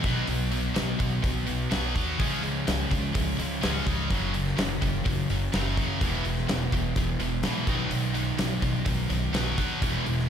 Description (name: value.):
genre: hard rock.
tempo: 126 BPM.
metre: 4/4.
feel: straight.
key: unclear.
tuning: A4 = 440 Hz.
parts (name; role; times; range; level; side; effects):
heavy high-gain guitar; riff; 0.0-10.3 s; E2 to C#4; -30 LUFS; equal; distortion.
sludgy distorted guitar; riff; 0.0-10.3 s; F#2 to E4; -31 LUFS; equal; overdrive.
upright bass; bass; 0.0-10.3 s; E1 to D#2; -31 LUFS; equal; none.
big rock drum kit; drums; 0.0-10.2 s; hi-hat, kick drum, snare drum; -30 LUFS; equal; none.
room: small room reverb.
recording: none.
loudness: -24 LUFS.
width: side -8 dB against mid.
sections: 0.0-10.3 A section.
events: none.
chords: 0.1 B; 2.2 C#; 4.1 F#; 6.0 E; 7.7 B.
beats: | 0.29 0.77 1.24 1.72 | 2.19 2.67 3.15 3.62 | 4.10 4.58 5.05 5.53 | 6.01 6.48 6.96 7.44 | 7.91 8.39 8.87 9.34 | 9.82.